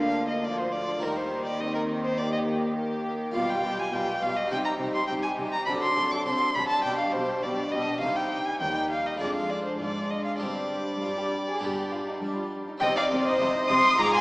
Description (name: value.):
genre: classical, baroque-style concerto movement with solo episodes.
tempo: 102 BPM.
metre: 4/4.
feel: straight.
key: Eb major, C minor from 3.3 s.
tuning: A4 = 439 Hz.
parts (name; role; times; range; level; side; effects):
rich chamber violin section; melody; 0.0-14.2 s; D4 to Eb6; -34 LUFS; equal; none.
rich violin; melody; 0.0-14.2 s; Bb4 to D6; -28 LUFS; equal; none.
warm chamber violin section; second line; 0.0-14.2 s; C4 to C6; -32 LUFS; equal; none.
harpsichord; accompaniment; 0.0-14.2 s; F2 to D5; -36 LUFS; equal; none.
warm chamber viola section; accompaniment; 0.0-14.2 s; F3 to Ab4; -34 LUFS; equal; none.
rich chamber double bass section; bass; 0.0-14.1 s; F1 to G2; -40 LUFS; equal; none.
warm symphonic cello section; bass; 0.0-14.1 s; F2 to G3; -35 LUFS; equal; none.
room: wet scoring stage reverb, RT60 2.0 s.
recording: recorded in a church or concert hall, small speaker sound.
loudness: -24 LUFS.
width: side -23 dB against mid.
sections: 0.0-12.8 A section; 12.8-14.2 B section.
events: none.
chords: 0.0 Bb7/D; 1.0 Eb; 3.3 G7/B; 4.5 Cm; 5.7 D7/C; 6.8 G/B; 8.0 Cm; 9.2 Ddim/F; 10.4 Gsus4; 11.6 G; 12.8 Cm.